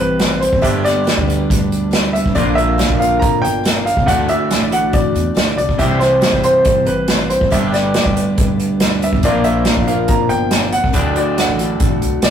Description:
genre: folk rock and heartland rock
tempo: 140 BPM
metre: 4/4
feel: straight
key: unclear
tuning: A4 = 440 Hz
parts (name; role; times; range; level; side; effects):
- clear grand piano; melody; 0.0-12.3 s; B4 to Bb5; -18 LUFS; equal; none
- picked twelve-string acoustic guitar; accompaniment; 0.0-12.3 s; G2 to D5; -24 LUFS; left 6 dB; none
- electric guitar through a small old amp; riff; 0.0-12.3 s; G2 to G4; -19 LUFS; right 1 dB; none
- upright bass; bass; 0.0-12.3 s; E1 to C3; -22 LUFS; equal; none
- unplugged drum kit; drums; 0.2-12.3 s; hi-hat, kick drum, snare drum; -18 LUFS; equal; none
room: moderate studio reverb, RT60 0.5 s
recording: rough rehearsal-room recording, tube saturation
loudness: -13 LUFS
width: side -8 dB against mid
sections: 0.0-12.3 A section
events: none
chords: 0.0 C; 0.6 G; 2.4 Bb; 4.1 Dadd9; 5.8 C; 7.5 G; 9.2 Bb; 10.9 Dadd9

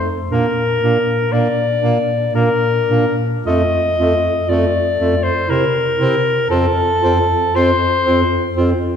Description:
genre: classical, lyrical piece for single-reed quartet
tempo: 59 BPM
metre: 3/4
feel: rubato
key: Bb major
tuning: A4 = 440 Hz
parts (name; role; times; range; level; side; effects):
- mellow soprano saxophone; melody; 0.0-8.6 s; A4 to Eb5; -17 LUFS; left 2 dB; none
- dark clarinet; second line; 0.3-8.7 s; D4 to F4; -24 LUFS; right 4 dB; none
- clear tenor saxophone; accompaniment; 0.3-8.7 s; A3 to C4; -22 LUFS; equal; none
- mellow bass clarinet; bass; 0.3-8.7 s; F2 to C3; -19 LUFS; right 1 dB; none
room: wet concert hall reverb, RT60 1.9 s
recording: heard from further back in the room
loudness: -14 LUFS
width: side -8 dB against mid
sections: 0.0-9.0 A section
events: none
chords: 0.3 Bb; 3.5 F; 5.5 C7; 6.5 F

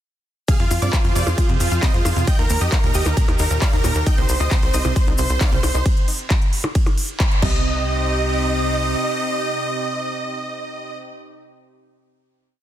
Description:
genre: uplifting trance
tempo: 134 BPM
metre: 4/4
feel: straight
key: C minor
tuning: A4 = 436 Hz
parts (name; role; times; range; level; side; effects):
- supersaw chords; melody; 0.5-11.0 s; F4 to G5; -25 LUFS; right 2 dB; sidechain pumping, digital delay
- supersaw stab; second line; 0.5-11.0 s; F5 to G6; -33 LUFS; equal; sidechain pumping, digital delay
- supersaw pad; sustained chords; 0.5-11.0 s; C3 to C5; -28 LUFS; equal; vintage 12-bit sampler grit, sidechain pumping
- tight sequenced synth; arpeggios; 0.5-7.8 s; Bb2 to F4; -30 LUFS; right 3 dB; chorus, sidechain pumping, digital delay
- electronic kick drum; drums; 0.5-7.5 s; none; -18 LUFS; equal; small room ambience
- techno drum kit; drums; 0.5-7.5 s; crash cymbal, handclaps, hi-hat, percussion blips, ride cymbal; -26 LUFS; equal; overdrive, small room ambience
- tube shaker; percussion; 0.5-5.8 s; none; -31 LUFS; left 5 dB; none
- tight sequencer bass; bass; 0.6-9.0 s; C2 to G2; -21 LUFS; equal; sidechain pumping
room: light reverb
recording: dense, heavily limited modern master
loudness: -17 LUFS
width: side -12 dB against mid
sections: 0.5-7.6 drop; 7.6-11.2 final hit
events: drop 0.5-7.6; band accent 7.2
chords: 0.5 Fm; 2.3 Eb; 4.1 Cm; 5.9 N.C.; 7.4 Cm

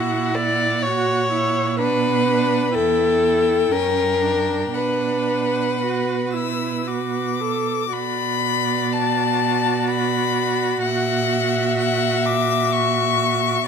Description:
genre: classical, slow romantic movement for string quartet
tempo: 56-65 BPM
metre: 3/4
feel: rubato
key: B minor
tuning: A4 = 442 Hz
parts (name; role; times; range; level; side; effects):
- clear violin; melody; 0.0-13.7 s; F#5 to E6; -24 LUFS; left 11 dB; none
- rich violin; second line; 0.0-13.7 s; F#4 to E5; -22 LUFS; left 3 dB; none
- rich viola; accompaniment; 0.0-13.6 s; C#4 to A4; -25 LUFS; right 3 dB; none
- clear cello; bass; 0.0-13.6 s; E2 to B2; -25 LUFS; right 9 dB; none
room: light reverb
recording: close, detailed microphones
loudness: -18 LUFS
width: side -6 dB against mid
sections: 0.0-7.9 A section; 7.9-13.7 A section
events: none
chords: 0.0 F#7/A#; 1.8 Bm; 2.7 Em; 3.7 F#; 4.7 Bm; 10.8 F#7/A#

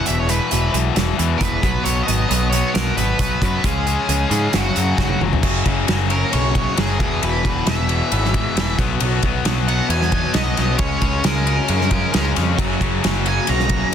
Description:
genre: quiet-loud alternative rock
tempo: 134 BPM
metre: 4/4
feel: straight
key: F# mixolydian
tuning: A4 = 440 Hz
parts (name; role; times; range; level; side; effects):
- octave-fuzz lead guitar; melody; 0.0-13.9 s; F#4 to A#5; -24 LUFS; right 5 dB; distortion, digital delay
- twelve-string electric guitar; arpeggios; 0.0-13.9 s; F#2 to E4; -28 LUFS; right 13 dB; wide subtle chorus, digital delay
- tight distorted guitar; riff; 0.0-13.9 s; E2 to C#4; -22 LUFS; left 10 dB; distortion
- growling picked electric bass; bass; 0.1-13.8 s; E1 to G#2; -21 LUFS; equal; overdrive
- loose indie drum kit; drums; 0.1-13.8 s; crash cymbal, hi-hat, kick drum, ride cymbal, snare drum, toms; -22 LUFS; equal; none
- distorted electric guitar; riff; 12.6-13.9 s; F#3 to F#4; -27 LUFS; right 18 dB; overdrive
room: little or no reverb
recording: dense, heavily limited modern master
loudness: -16 LUFS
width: side -8 dB against mid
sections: 0.0-5.4 A section; 5.4-13.9 B section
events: half time 0.0-5.4; drum fill 5.0-5.4; lead electric guitar solo 5.4-13.9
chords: 0.0 E; 1.6 B; 3.6 C#; 4.5 F#5; 5.4 F#; 7.0 E; 8.8 B; 10.8 C#; 12.6 F#

